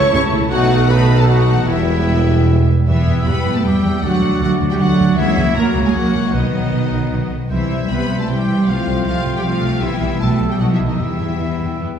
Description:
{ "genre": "cinematic", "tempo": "155 BPM", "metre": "3/4", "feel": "straight", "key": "E minor", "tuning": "A4 = 440 Hz", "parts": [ { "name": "warm symphonic violin section", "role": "melody", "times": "0.0-11.8 s", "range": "D#5 to C#6", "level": "-28 LUFS", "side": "left 4 dB", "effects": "none" }, { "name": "large flute ensemble", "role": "second line", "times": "0.0-12.0 s", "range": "E5 to A5", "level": "-32 LUFS", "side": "left 2 dB", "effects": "none" }, { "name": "warm clarinet", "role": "second line", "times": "0.0-12.0 s", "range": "G3 to E4", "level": "-28 LUFS", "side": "left 5 dB", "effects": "none" }, { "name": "warm oboe", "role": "second line", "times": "0.0-12.0 s", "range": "E4 to E5", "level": "-29 LUFS", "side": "equal", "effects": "none" }, { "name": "warm symphonic violin section", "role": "second line", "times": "0.0-11.8 s", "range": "D#5 to C#6", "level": "-30 LUFS", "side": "left 4 dB", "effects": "none" }, { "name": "rich studio viola section", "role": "accompaniment", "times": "0.0-11.9 s", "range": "E3 to E4", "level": "-27 LUFS", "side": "equal", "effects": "none" }, { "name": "dark French horn section", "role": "sustained chords", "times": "0.0-11.8 s", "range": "B3 to C#5", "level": "-25 LUFS", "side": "left 3 dB", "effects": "none" }, { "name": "dark trombone section", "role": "sustained chords", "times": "0.0-12.0 s", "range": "D3 to C4", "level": "-26 LUFS", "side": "right 1 dB", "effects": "none" }, { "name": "concert harp", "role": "arpeggios", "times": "0.0-12.0 s", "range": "B2 to B5", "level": "-27 LUFS", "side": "left 5 dB", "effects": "none" }, { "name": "dark trumpet section", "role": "stabs", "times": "0.0-11.8 s", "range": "D#4 to C#5", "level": "-26 LUFS", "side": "equal", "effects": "none" }, { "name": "clear tuba", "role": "bass", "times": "0.0-2.7 s", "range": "E1 to C#2", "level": "-22 LUFS", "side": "right 2 dB", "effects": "none" }, { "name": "bright symphonic double bass section", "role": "bass", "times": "0.1-11.9 s", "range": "E1 to E2", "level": "-19 LUFS", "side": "right 2 dB", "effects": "none" }, { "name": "rich symphonic cello section", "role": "bass", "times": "0.1-11.8 s", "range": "E2 to B3", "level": "-19 LUFS", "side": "right 2 dB", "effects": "none" } ], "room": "wet scoring stage reverb, RT60 1.8 s", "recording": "heard from further back in the room", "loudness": "-14 LUFS", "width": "side -8 dB against mid", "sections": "0.0-2.9 A section; 2.9-12.0 B section", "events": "none", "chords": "0.0 A/C#; 0.5 B7; 1.7 Em; 4.0 D; 5.2 F#7/C#; 6.3 B; 7.5 C; 8.7 Fadd9/C; 9.8 Em/B; 10.6 B7; 11.0 Em", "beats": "0.13 | 0.52 0.90 1.28 | 1.68 2.08 2.48 | 2.87 3.26 3.65 | 4.03 4.42 4.80 | 5.18 5.56 5.95 | 6.34 6.74 7.13 | 7.52 7.91 8.29 | 8.68 9.06 9.45 | 9.83 10.21 10.60 | 11.00 11.40 11.79" }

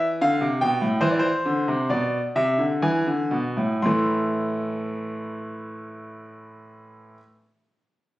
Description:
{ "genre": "classical, baroque-style two-part invention for grand piano", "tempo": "56-77 BPM", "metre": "3/4", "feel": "straight", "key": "A minor", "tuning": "A4 = 440 Hz", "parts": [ { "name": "bright concert grand piano", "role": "solo", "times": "0.0-7.2 s", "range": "A2 to C6", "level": "-22 LUFS", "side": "equal", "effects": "none" } ], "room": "light reverb", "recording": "recorded on a phone in the room, studio reverb", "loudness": "-21 LUFS", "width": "side -16 dB against mid", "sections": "0.0-3.8 A section; 3.8-8.2 B section", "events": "slowing down 0.0-3.8", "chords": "0.2 Bm7b5; 1.0 Cmaj9; 2.8 E7; 3.8 Am", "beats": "0.20 | 1.01 1.88 2.80 | 3.81 4.87 5.93 | 6.99" }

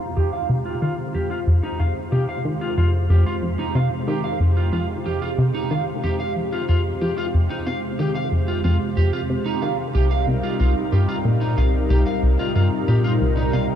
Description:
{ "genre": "ambient, sequencer-driven space music", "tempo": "92 BPM", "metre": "4/4", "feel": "straight", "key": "F minor", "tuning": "A4 = 440 Hz", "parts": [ { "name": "phased analog pad", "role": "sustained chords", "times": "0.0-13.8 s", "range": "C3 to C5", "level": "-27 LUFS", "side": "equal", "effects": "phaser, chorus" }, { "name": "electric guitar at the edge of break-up", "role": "arpeggios", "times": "0.2-13.7 s", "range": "Eb4 to F5", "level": "-26 LUFS", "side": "moving between left 4 dB and right 6 dB", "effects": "auto-pan, low-pass filter, analog delay" }, { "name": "plucky analog bass", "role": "riff", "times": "0.2-13.7 s", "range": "C2 to F3", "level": "-20 LUFS", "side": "equal", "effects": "analog delay" } ], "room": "moderate huge ambient reverb, RT60 8.0 s", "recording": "dark, warm production", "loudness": "-19 LUFS", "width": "side -9 dB against mid", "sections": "0.0-13.8 A section", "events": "fade-in on analog synth pad 0.0-13.8; filter sweep on clean electric guitar 0.0-13.8", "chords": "0.0 Fm; 9.9 Cm7", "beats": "0.17 0.82 1.47 | 2.12 2.78 3.43 4.08 | 4.73 5.38 6.04 6.69 | 7.34 7.99 8.65 9.30 | 9.95 10.60 11.26 11.91 | 12.56 13.21" }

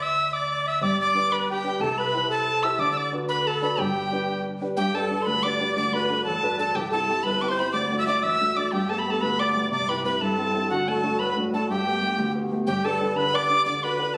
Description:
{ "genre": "celtic folk, Celtic jig", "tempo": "121 BPM (dotted quarters)", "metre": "6/8", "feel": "straight", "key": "G major", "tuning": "A4 = 436 Hz", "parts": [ { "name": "tin whistle", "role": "melody", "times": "0.0-14.2 s", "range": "F#5 to E6", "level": "-27 LUFS", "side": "equal", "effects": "none" }, { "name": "musette accordion", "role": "second line", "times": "0.0-14.2 s", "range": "F#4 to E5", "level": "-31 LUFS", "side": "equal", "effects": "none" }, { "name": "upright bass", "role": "bass", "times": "0.0-4.7, 12.7-14.2 s", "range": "G1 to D2", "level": "-42 LUFS", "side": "equal", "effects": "none" }, { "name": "warm concert grand piano", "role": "accompaniment", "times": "0.8-14.2 s", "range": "G1 to C5", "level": "-30 LUFS", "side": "equal", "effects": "none" }, { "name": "rich cello", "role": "drone", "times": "4.8-12.7 s", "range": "G2", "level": "-43 LUFS", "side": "equal", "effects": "none" } ], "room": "wet recital hall reverb, RT60 1.4 s", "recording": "recorded on a phone in the room, studio reverb, compression", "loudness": "-24 LUFS", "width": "mono", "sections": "0.0-4.8 A section; 4.8-12.7 B section; 12.7-14.2 B section", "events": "none", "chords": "0.0 Dsus2; 0.8 G; 1.8 C; 2.8 D6; 3.8 G; 5.8 D; 6.7 C; 7.7 D; 8.7 Gadd9; 9.7 C; 10.7 D; 11.7 Gadd9; 12.7 G; 13.7 D", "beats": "0.33 | 0.82 1.31 | 1.80 2.30 | 2.79 3.29 | 3.78 4.27 | 4.77 5.26 | 5.76 6.25 | 6.75 7.24 | 7.73 8.23 | 8.72 9.22 | 9.71 10.21 | 10.70 11.20 | 11.69 12.18 | 12.68 13.17 | 13.66 14.16" }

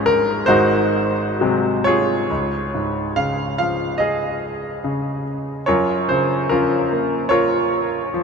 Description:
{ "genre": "classical, lyrical solo piano", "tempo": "63-74 BPM", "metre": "4/4", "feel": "rubato", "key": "Db major", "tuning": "A4 = 440 Hz", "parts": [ { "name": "bright grand piano", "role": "solo", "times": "0.0-8.2 s", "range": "Ab1 to F5", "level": "-17 LUFS", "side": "equal", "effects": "none" } ], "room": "wet huge ambient reverb, RT60 4.4 s", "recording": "heard from further back in the room", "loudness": "-17 LUFS", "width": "side -5 dB against mid", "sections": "0.0-2.3 A section; 2.3-8.2 B section", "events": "none", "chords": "0.5 Ab7; 2.3 Db; 5.7 Gbmaj7", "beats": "0.48 1.39 | 2.30 3.16 4.01 4.84 | 5.67 6.49 7.31 8.12" }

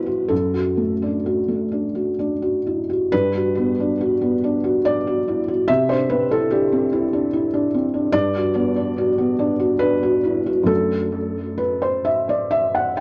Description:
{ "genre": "neoclassical minimalist piano", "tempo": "63-75 BPM", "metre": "3/4", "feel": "rubato", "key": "G major", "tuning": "A4 = 440 Hz", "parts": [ { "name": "felt-muted upright piano", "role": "solo", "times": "0.0-13.0 s", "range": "F#2 to G5", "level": "-20 LUFS", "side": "equal", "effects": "tape echo" } ], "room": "wet studio reverb, RT60 0.6 s", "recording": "worn, warbling old tape, cassette tape, warbly pitch drift", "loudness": "-20 LUFS", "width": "mono", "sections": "0.0-3.1 A section; 3.1-13.0 B section", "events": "none", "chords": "0.3 D/F#; 3.1 Gmaj7; 5.7 Cadd9; 8.1 Gmaj7; 10.7 D/F#", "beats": "| 0.31 1.26 2.19 | 3.12 3.98 4.83 | 5.68 6.51 7.33 | 8.13 8.96 9.82 | 10.70 11.60 12.52" }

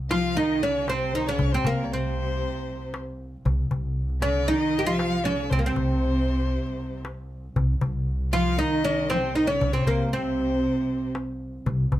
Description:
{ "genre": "Arabic maqam ensemble", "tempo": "117 BPM", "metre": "4/4", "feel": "straight", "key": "C maqam bayati", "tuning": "A4 = 439 Hz", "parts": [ { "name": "upright bass", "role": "bass", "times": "0.0-12.0 s", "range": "C2", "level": "-27 LUFS", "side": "equal", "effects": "none" }, { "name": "warm double bass", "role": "drone", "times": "0.0-12.0 s", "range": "C2", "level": "-36 LUFS", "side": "equal", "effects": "none" }, { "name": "oud", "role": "melody", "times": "0.1-11.1 s", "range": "Bb3 to G4", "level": "-26 LUFS", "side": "right 1 dB", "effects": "none" }, { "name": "dark symphonic cello section", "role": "second line", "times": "0.1-11.1 s", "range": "C3 to F3", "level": "-30 LUFS", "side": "equal", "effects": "none" }, { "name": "warm violin", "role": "second line", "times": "0.1-11.1 s", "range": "Bb4 to F5", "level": "-33 LUFS", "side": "left 5 dB", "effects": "none" }, { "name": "darbuka", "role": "percussion", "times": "0.1-12.0 s", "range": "none", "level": "-28 LUFS", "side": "left 2 dB", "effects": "none" } ], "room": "light reverb", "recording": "none", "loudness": "-22 LUFS", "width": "side -13 dB against mid", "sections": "0.0-12.0 A section", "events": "none", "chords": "none", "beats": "0.36 0.88 | 1.40 1.91 2.42 2.94 | 3.45 3.97 4.48 5.00 | 5.51 6.02 6.54 7.05 | 7.56 8.08 8.59 9.10 | 9.62 10.13 10.64 11.15 | 11.66" }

